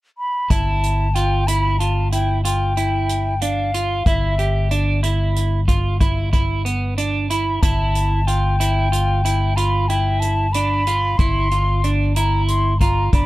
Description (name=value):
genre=progressive instrumental, band music in an uneven meter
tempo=185 BPM (eighths)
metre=11/8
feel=straight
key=G mixolydian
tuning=A4 = 440 Hz
part: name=mellow hollow silver concert flute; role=melody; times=0.2-13.3 s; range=E5 to C6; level=-22 LUFS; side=left 2 dB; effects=none
part: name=electric guitar at the edge of break-up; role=arpeggios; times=0.5-13.3 s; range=B3 to G4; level=-24 LUFS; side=right 4 dB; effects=lush chorus
part: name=fingered electric bass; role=bass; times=0.5-13.3 s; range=G1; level=-19 LUFS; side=equal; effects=none
part: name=unplugged drum kit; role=drums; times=0.5-13.3 s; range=hi-hat, kick drum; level=-21 LUFS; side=equal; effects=none
room=little or no reverb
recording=none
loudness=-16 LUFS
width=side -17 dB against mid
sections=0.5-13.3 A section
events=none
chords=0.0 N.C.; 0.5 G5; 4.1 Em/G; 7.6 G